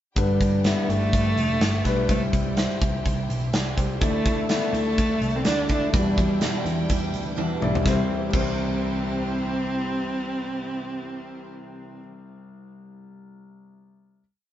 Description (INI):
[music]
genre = piano-driven pop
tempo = 125 BPM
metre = 4/4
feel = swing 56% on 16ths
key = C major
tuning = A4 = 440 Hz
[part]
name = warm cello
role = melody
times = 0.2-12.0 s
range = G3 to D4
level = -27 LUFS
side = right 1 dB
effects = digital delay
[part]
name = warm concert grand piano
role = accompaniment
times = 0.2-14.2 s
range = C2 to G5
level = -29 LUFS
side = left 3 dB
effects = none
[part]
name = clear studio string section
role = sustained chords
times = 0.2-11.5 s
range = D4 to A5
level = -38 LUFS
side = equal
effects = none
[part]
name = vintage muted picked electric bass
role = bass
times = 0.2-12.0 s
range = F1 to E2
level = -28 LUFS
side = equal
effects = none
[part]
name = huge arena drum kit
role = drums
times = 0.2-8.5 s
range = crash cymbal, hi-hat, kick drum, snare drum, toms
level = -26 LUFS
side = equal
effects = none
[part]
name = picked steel-string acoustic guitar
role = riff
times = 4.0-12.1 s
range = E2 to E4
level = -32 LUFS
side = right 3 dB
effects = none
[sound]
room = wet studio reverb, RT60 0.5 s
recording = band playing live in one room, nothing above 7.7 kHz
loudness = -21 LUFS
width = side -12 dB against mid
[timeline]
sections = 0.2-7.9 pre-chorus; 7.9-11.7 final chord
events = drum fill 7.4-7.9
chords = 0.2 G; 2.1 C; 4.0 Dsus2; 5.9 Em7; 7.9 C